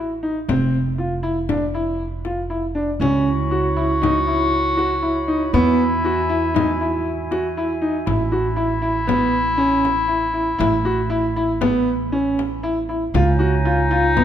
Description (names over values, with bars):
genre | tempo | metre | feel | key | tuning
contemporary instrumental, chamber music in an uneven meter | 119 BPM | 5/4 | straight | A lydian | A4 = 440 Hz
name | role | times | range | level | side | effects
warm concert grand piano | arpeggios | 0.0-14.2 s | B3 to F#4 | -20 LUFS | equal | none
upright bass | bass | 0.0-14.2 s | F1 to E2 | -24 LUFS | right 2 dB | none
frame drum | percussion | 0.5-14.2 s | none | -29 LUFS | left 9 dB | none
clear clarinet | second line | 3.0-14.2 s | D#4 to F#4 | -22 LUFS | left 2 dB | none
glass harmonica | sustained chords | 3.0-8.0, 13.1-14.2 s | E4 to B5 | -28 LUFS | right 1 dB | none
room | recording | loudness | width
light reverb | none | -17 LUFS | side -10 dB against mid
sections
0.0-8.1 A section; 8.1-14.2 B section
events
none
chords
0.5 F5; 3.0 C#m7; 5.5 Eadd9; 8.1 A5; 13.1 C#